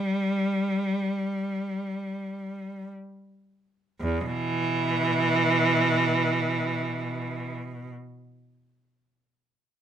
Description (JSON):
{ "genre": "classical, free, expressive piece for unaccompanied cello", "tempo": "free time", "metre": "none", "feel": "none", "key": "E minor", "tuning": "A4 = 440 Hz", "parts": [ { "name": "bright cello", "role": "solo", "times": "0.0-7.9 s", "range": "E2 to G3", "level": "-25 LUFS", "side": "right 1 dB", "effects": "none" } ], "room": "little or no reverb", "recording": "close, detailed microphones", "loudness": "-24 LUFS", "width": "side -9 dB against mid", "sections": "0.0-4.0 A section; 4.0-9.8 B section", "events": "slowing down 0.0-4.0", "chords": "none" }